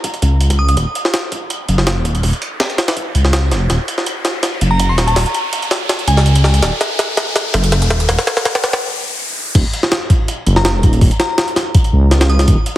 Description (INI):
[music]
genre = drum and bass, jungle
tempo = 164 BPM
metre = 4/4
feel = swing 53% on 16ths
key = Eb minor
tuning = A4 = 435 Hz
[part]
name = jungle sampler-style drum kit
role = drums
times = 0.0-12.8 s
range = crash cymbal, hi-hat, kick drum, snare drum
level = -16 LUFS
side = equal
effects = high-pass filter on hats, high-pass filter on kick, high-pass filter on snare, high-pass filter on cymbals, high-pass filter on room
[part]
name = riser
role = sound effects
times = 0.0-9.6 s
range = none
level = -24 LUFS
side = equal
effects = none
[part]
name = detuned saw bass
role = bass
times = 0.2-12.6 s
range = Eb1 to Db2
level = -13 LUFS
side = equal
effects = none
[part]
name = glassy synth bell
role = melody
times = 0.6-0.7, 4.7-6.6, 10.6-12.4 s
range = Ab5 to Eb6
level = -22 LUFS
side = equal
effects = chorus, phaser, vintage 12-bit sampler grit, dub echo
[sound]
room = light reverb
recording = heavily compressed radio sound, multiband compression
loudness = -12 LUFS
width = side -14 dB against mid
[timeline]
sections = 0.0-9.6 A section; 9.6-12.8 B section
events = build-up 0.0-9.6; riser 0.0-9.6; drum fill 3.7-8.8; break 8.8-9.6; drop 9.6-12.8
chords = 0.0 Ebm7